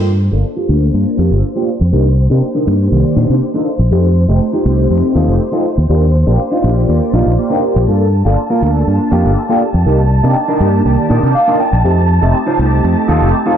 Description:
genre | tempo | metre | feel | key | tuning
house | 121 BPM | 4/4 | straight | G minor | A4 = 440 Hz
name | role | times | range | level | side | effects
mellow synth brass | accompaniment | 0.0-13.6 s | Eb3 to A5 | -16 LUFS | equal | chorus, phaser, low-pass filter
rich studio violin section | sustained chords | 0.0-13.6 s | C5 to A5 | -23 LUFS | right 2 dB | low-pass filter
fingered electric bass | bass | 0.0-13.3 s | F1 to C3 | -12 LUFS | equal | tube saturation, low-pass filter
mellow electric guitar | riff | 0.3-13.6 s | Bb3 to G5 | -17 LUFS | right 1 dB | vintage 12-bit sampler grit, low-pass filter
room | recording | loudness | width
light reverb, digital ambience | dense, heavily limited modern master | -10 LUFS | side -9 dB against mid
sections
0.0-13.6 A section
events
filter sweep 0.0-13.6; clean electric guitar fill 10.9-11.8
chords
0.0 Gm7; 1.9 Cm9; 3.9 F7; 5.9 Ebmaj7; 7.9 Gm7; 9.9 Cm9; 11.8 F7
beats
0.44 0.94 1.43 | 1.93 2.42 2.92 3.42 | 3.91 4.41 4.90 5.40 | 5.89 6.39 6.89 7.38 | 7.88 8.37 8.87 9.37 | 9.86 10.36 10.85 11.35 | 11.85 12.34 12.84 13.33

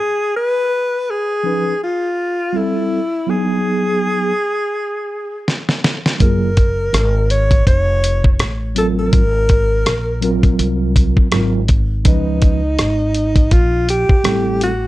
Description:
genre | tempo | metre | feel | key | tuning
hip hop, jazz-hop | 82 BPM | 4/4 | swing 58% on 16ths | unclear | A4 = 440 Hz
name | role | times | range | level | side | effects
breathy alto saxophone | melody | 0.0-14.9 s | D#4 to C#5 | -18 LUFS | equal | tape echo
mellow tine electric piano | accompaniment | 1.4-14.7 s | E#3 to B4 | -19 LUFS | right 1 dB | medium stereo tremolo
dusty soul sampler-style drum kit | drums | 5.5-14.8 s | hi-hat, kick drum, rim click, snare drum | -14 LUFS | equal | none
upright bass | bass | 6.2-14.9 s | E#1 to C#2 | -18 LUFS | equal | none
room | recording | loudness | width
light reverb | dark, warm production | -14 LUFS | side -17 dB against mid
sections
0.0-14.9 A section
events
drum fill 5.5-6.2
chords
0.4 C#9; 2.5 Am7; 3.3 G#m7; 6.2 F#maj9; 8.4 Fadd11/A; 9.1 G#13; 12.1 C#9; 14.3 Am7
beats
| 0.35 1.08 1.81 2.55 | 3.28 4.01 4.74 5.47 | 6.21 6.94 7.67 8.40 | 9.13 9.86 10.60 11.33 | 12.06 12.79 13.52 14.25

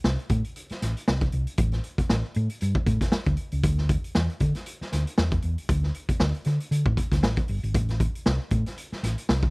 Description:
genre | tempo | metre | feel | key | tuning
funk | 117 BPM | 4/4 | swing 56% on 16ths | A minor | A4 = 440 Hz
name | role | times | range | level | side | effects
hollow-body short-scale fingered electric bass | bass | 0.0-9.5 s | G1 to D3 | -25 LUFS | equal | none
raw garage drum kit | drums | 0.0-9.5 s | hi-hat, kick drum, snare drum | -26 LUFS | equal | none
room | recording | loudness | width
little or no reverb | dry, close 1970s-style studio recording | -23 LUFS | side -34 dB against mid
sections
0.0-9.5 A section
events
none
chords
none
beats
0.04 0.56 1.07 | 1.58 2.10 2.61 3.12 | 3.64 4.15 4.66 5.18 | 5.69 6.20 6.72 7.23 | 7.74 8.26 8.77 9.29

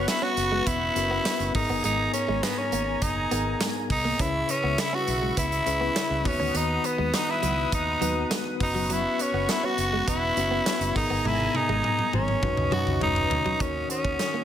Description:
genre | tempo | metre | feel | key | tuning
1980s-style pop | 102 BPM | 4/4 | straight | unclear | A4 = 441 Hz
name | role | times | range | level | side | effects
raspy tenor saxophone | melody | 0.0-14.4 s | B3 to F#4 | -26 LUFS | equal | ping-pong delay
mellow tine electric piano | accompaniment | 0.0-14.4 s | G#2 to C#5 | -31 LUFS | left 3 dB | fast stereo tremolo
warm analog pad | sustained chords | 0.0-14.4 s | B4 to D#6 | -35 LUFS | left 1 dB | chorus
direct-recorded clean electric guitar | riff | 0.0-14.4 s | F#3 to D#4 | -35 LUFS | right 5 dB | analog chorus
vintage muted fingered electric bass | bass | 0.0-14.2 s | E1 to D#2 | -31 LUFS | equal | none
big rock drum kit | drums | 0.1-14.3 s | hi-hat, kick drum, snare drum, tambourine, toms | -30 LUFS | right 1 dB | none
room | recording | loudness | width
moderate plate reverb, RT60 1.2 s, small room ambience | none | -23 LUFS | side -10 dB against mid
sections
0.0-13.6 A section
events
drum fill 11.3-13.6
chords
0.0 F#sus4; 1.5 G#madd9; 4.2 C#m7; 6.3 B; 8.6 F#sus4; 11.0 G#madd9; 12.4 Badd9; 13.6 D#m7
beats
0.08 0.66 1.25 | 1.84 2.43 3.02 3.60 | 4.19 4.78 5.37 5.96 | 6.55 7.13 7.72 8.31 | 8.90 9.49 10.08 10.66 | 11.25 11.84 12.43 13.02 | 13.61 14.19

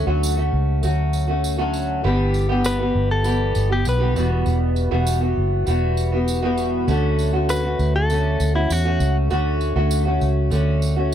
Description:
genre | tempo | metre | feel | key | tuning
acoustic pop | 99 BPM | 4/4 | straight | D major | A4 = 440 Hz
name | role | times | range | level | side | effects
fingerpicked acoustic archtop guitar | accompaniment | 0.0-11.1 s | E2 to G4 | -22 LUFS | equal | double-tracked left and right
vintage muted fingered electric bass | bass | 0.0-11.1 s | E1 to E2 | -20 LUFS | equal | none
tambourine | percussion | 0.2-11.1 s | none | -34 LUFS | right 7 dB | none
direct-recorded clean electric guitar | melody | 2.7-9.2 s | E4 to B4 | -24 LUFS | left 2 dB | none
room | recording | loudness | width
little or no reverb | dry, close 1970s-style studio recording | -18 LUFS | side -10 dB against mid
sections
0.0-11.1 A section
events
none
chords
0.0 Dmaj7; 2.0 G6; 4.2 Emadd9; 6.9 Dmaj7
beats
0.23 0.83 1.44 | 2.04 2.65 3.25 3.86 | 4.46 5.07 5.67 6.28 | 6.88 7.49 8.10 8.70 | 9.31 9.91 10.52 11.12

